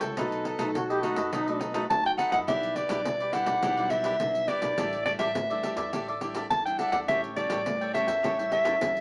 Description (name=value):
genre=samba and choro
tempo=104 BPM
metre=4/4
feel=straight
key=unclear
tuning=A4 = 440 Hz
part: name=growling soprano saxophone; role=melody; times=0.0-9.0 s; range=A4 to A5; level=-29 LUFS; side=equal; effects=none
part: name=cavaquinho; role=accompaniment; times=0.0-8.8 s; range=D#4 to G5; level=-36 LUFS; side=equal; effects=none
part: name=nylon-string guitar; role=accompaniment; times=0.0-9.0 s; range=A2 to F#4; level=-40 LUFS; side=equal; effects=none
part: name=upright bass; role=bass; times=0.0-9.0 s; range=A1 to B2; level=-42 LUFS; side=equal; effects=none
part: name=pandeiro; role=percussion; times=0.0-9.0 s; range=none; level=-38 LUFS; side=equal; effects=none
part: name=clear trombone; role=second line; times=0.8-1.7 s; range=D#4 to G4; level=-32 LUFS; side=equal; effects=none
room=moderate studio reverb, RT60 0.7 s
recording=small speaker sound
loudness=-28 LUFS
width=mono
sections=0.0-9.0 A section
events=none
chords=0.2 B7; 2.5 Em7/B; 4.8 A7sus4; 7.1 A7